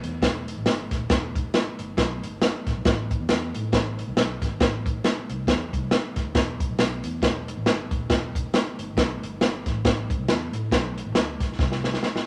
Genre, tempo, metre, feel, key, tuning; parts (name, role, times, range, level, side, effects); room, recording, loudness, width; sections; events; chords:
uptempo 1960s-style soul; 137 BPM; 4/4; swing 58% on 8ths; A4 = 437 Hz
vintage muted fingered electric bass; bass; 0.0-12.2 s; Eb1 to A2; -34 LUFS; equal
swinging big-band drum kit; drums; 0.0-12.3 s; hi-hat, kick drum, snare drum; -25 LUFS; equal
wet small room ambience, RT60 0.5 s; -25 LUFS; mono
0.0-12.3 A section
drum fill 11.6-12.3